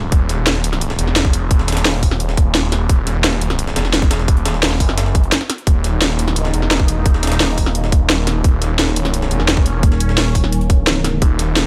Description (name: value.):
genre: dark technical drum and bass.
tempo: 173 BPM.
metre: 4/4.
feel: straight.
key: unclear.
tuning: A4 = 439 Hz.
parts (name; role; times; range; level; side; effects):
snarling distorted saw bass; bass; 0.0-11.7 s; Eb1 to Gb1; -20 LUFS; equal; distortion, overdrive, sidechain pumping.
breakbeat sampler-style drum kit; drums; 0.1-11.6 s; hi-hat, snare drum; -29 LUFS; equal; high-pass filter on hats, small room ambience, high-pass filter on snare.
drum and bass drum kit; drums; 0.1-11.6 s; hi-hat, snare drum; -20 LUFS; equal; small room ambience.
electronic kick drum; drums; 0.1-11.3 s; none; -16 LUFS; equal; small room ambience.
sweeping resonant pad; sustained chords; 5.7-11.7 s; Eb3 to Eb4; -27 LUFS; equal; chorus, sidechain pumping.
pulsing pluck wobble bass; bass; 9.8-11.2 s; Eb1; -19 LUFS; equal; chorus.
room: digital ambience.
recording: none.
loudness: -16 LUFS.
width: mono.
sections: 0.0-11.7 A section.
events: none.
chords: 0.0 Eb5.